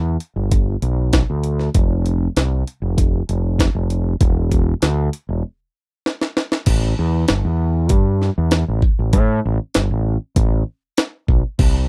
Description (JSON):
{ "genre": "classic rock", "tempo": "98 BPM", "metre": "4/4", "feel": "straight", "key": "A minor", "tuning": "A4 = 437 Hz", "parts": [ { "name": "growling fingered electric bass", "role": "bass", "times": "0.0-11.9 s", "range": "E1 to A2", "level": "-20 LUFS", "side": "equal", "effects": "overdrive" }, { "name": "jungle sampler-style drum kit", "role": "drums", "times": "0.2-11.7 s", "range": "crash cymbal, hi-hat, kick drum, snare drum", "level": "-19 LUFS", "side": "equal", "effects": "none" } ], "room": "little or no reverb", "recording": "dry, close 1970s-style studio recording", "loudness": "-19 LUFS", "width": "mono", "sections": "0.0-6.7 A section; 6.7-11.9 B section", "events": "break 5.4-6.7; drum fill 6.1-6.7", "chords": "none" }